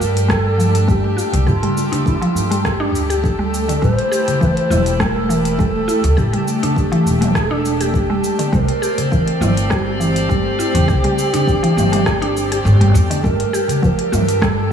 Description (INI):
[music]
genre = organic downtempo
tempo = 102 BPM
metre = 4/4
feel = swing 54% on 16ths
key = G dorian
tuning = A4 = 441 Hz
[part]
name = mellow bass bansuri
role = melody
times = 0.0-14.7 s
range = F4 to C5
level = -22 LUFS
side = equal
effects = vintage 12-bit sampler grit, digital delay, slapback echo
[part]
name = warm chamber string section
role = sustained chords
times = 0.0-14.7 s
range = G3 to D5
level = -24 LUFS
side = equal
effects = sidechain pumping
[part]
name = mallet-like synth pluck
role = arpeggios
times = 0.0-14.7 s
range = D3 to G4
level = -20 LUFS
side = equal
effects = chorus, tape echo
[part]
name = upright bass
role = bass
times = 0.0-14.7 s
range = E1 to G2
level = -18 LUFS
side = equal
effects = sidechain pumping
[part]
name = organic electronic drum kit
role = drums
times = 0.0-14.5 s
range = hi-hat, rim click, shaker, toms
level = -24 LUFS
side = equal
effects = none
[part]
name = twinkling granular texture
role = texture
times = 0.0-14.7 s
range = A3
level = -28 LUFS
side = right 1 dB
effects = built-in reverb
[part]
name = darbuka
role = percussion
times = 0.2-14.4 s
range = none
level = -25 LUFS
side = left 2 dB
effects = none
[part]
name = electronic kick drum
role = drums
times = 0.3-14.5 s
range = none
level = -20 LUFS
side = equal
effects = none
[sound]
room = moderate lush hall reverb, RT60 1.6 s, small room ambience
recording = big arena sound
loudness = -14 LUFS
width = side -8 dB against mid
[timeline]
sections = 0.0-13.2 A section; 13.2-14.7 A section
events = kick drops out 12.6-13.2; filter sweep on synth pluck 13.2-14.7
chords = 0.0 G7sus2; 3.8 Am7; 8.5 C; 13.2 Gm9